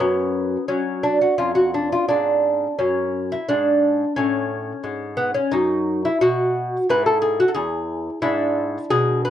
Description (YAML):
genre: classical, baroque-style dance for lute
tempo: 88 BPM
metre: 4/4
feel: rubato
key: E major from 5.5 s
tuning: A4 = 439 Hz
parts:
  - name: lute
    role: solo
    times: 0.0-9.3 s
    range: E2 to B4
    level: -18 LUFS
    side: equal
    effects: none
room: little or no reverb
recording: dry, close 1970s-style studio recording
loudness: -18 LUFS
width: side -10 dB against mid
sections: 0.0-9.3 A section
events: none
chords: 0.0 F#5; 1.4 C#/E#; 2.8 F#m; 5.5 B5/F#; 6.9 E/G#; 8.2 E7/G#